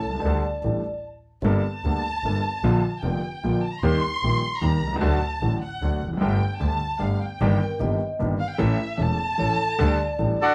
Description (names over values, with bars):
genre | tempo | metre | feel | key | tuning
tango | 151 BPM | 3/4 | rubato | G minor | A4 = 445 Hz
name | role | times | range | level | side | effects
dark studio violin section | second line | 0.0-10.5 s | E5 to C6 | -32 LUFS | equal | none
vibraphone with soft mallets | second line | 0.0-1.0, 7.6-10.5 s | A4 to Eb5 | -32 LUFS | equal | none
clear double bass | bass | 0.0-10.4 s | E1 to Eb2 | -28 LUFS | equal | none
clear concert grand piano | accompaniment | 0.1-10.4 s | E1 to A4 | -28 LUFS | equal | none
bandoneon | melody | 10.4-10.5 s | D4 to A4 | -19 LUFS | equal | none
room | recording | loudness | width
moderate club reverb, RT60 0.5 s | none | -24 LUFS | mono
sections
0.0-1.4 A section; 1.4-10.5 A section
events
violin section solo 0.0-1.4, 1.4-10.5; stop 1.0-1.4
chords
0.2 Dsus4; 1.0 N.C.; 1.4 Gmadd9; 2.6 Bb; 3.8 Eb; 5.0 D; 6.2 Gsus2; 7.4 Ebmaj7/G; 8.6 A; 9.8 Dsus4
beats
| 0.23 0.62 1.03 | 1.43 1.83 2.23 | 2.62 3.02 3.42 | 3.82 4.21 4.61 | 5.01 5.41 5.81 | 6.21 6.61 7.01 | 7.41 7.80 8.20 | 8.60 8.99 9.39 | 9.79 10.19